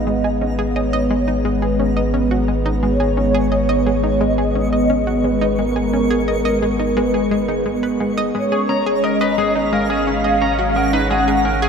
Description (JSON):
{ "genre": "ambient, sequencer-driven space music", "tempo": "87 BPM", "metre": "4/4", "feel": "straight", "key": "G# dorian", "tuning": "A4 = 441 Hz", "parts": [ { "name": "mellow horn-like synth lead", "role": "melody", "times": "0.0-11.7 s", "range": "A#4 to F#5", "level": "-21 LUFS", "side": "equal", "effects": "ensemble chorus, analog delay" }, { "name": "sweeping resonant pad", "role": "sustained chords", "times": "0.0-11.7 s", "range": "G#3 to C#4", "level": "-19 LUFS", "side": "equal", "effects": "chorus" }, { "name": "analog pluck", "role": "riff", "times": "0.0-11.7 s", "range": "G#3 to D#5", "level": "-24 LUFS", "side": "equal", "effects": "chorus, analog delay" }, { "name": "round analog bass", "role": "bass", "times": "0.0-11.7 s", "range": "G#1", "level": "-24 LUFS", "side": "equal", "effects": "none" }, { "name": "twinkling granular texture", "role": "texture", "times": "0.0-11.7 s", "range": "A#5 to C#6", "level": "-36 LUFS", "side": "right 1 dB", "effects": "built-in reverb, wide subtle chorus" }, { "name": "clean electric guitar", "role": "arpeggios", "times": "8.5-11.7 s", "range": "G#4 to A#5", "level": "-23 LUFS", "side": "moving between left 6 dB and right 3 dB", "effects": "auto-pan, analog delay" } ], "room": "wet huge ambient reverb, RT60 7.7 s", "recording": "dreamy mix soaked in reverb", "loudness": "-15 LUFS", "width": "side -6 dB against mid", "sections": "0.0-11.7 A section", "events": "fade-in on synth texture 0.0-11.7", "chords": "0.0 G#madd9", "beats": "| 0.07 0.76 1.45 2.14 | 2.83 3.52 4.21 4.90 | 5.59 6.28 6.97 7.66 | 8.35 9.04 9.73 10.42 | 11.11" }